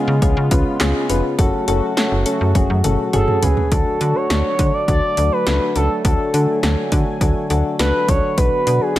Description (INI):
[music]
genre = synth-pop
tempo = 103 BPM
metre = 4/4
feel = straight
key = unclear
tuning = A4 = 440 Hz
[part]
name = soft electric-piano-like synth keys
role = accompaniment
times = 0.0-9.0 s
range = C#4 to B4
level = -22 LUFS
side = left 2 dB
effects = chorus
[part]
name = warm analog pad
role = sustained chords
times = 0.0-9.0 s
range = C#3 to G#5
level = -26 LUFS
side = right 1 dB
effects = chorus
[part]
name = slap-like FM bass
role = bass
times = 0.1-9.0 s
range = E#1 to D3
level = -19 LUFS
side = equal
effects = none
[part]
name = punchy analog drum machine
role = drums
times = 0.2-9.0 s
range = handclaps, hi-hat, kick drum, snare drum, toms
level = -20 LUFS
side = equal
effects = overdrive, gated reverb
[part]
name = expressive portamento lead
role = melody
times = 3.1-9.0 s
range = G#4 to D5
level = -20 LUFS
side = equal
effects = chorus, digital delay
[sound]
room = light reverb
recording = none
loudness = -15 LUFS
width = side -14 dB against mid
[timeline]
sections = 0.0-3.7 A section; 3.7-9.0 B section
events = drum fill 2.6-3.7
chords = 0.0 C#7; 1.4 F#m; 3.7 D; 8.4 Bm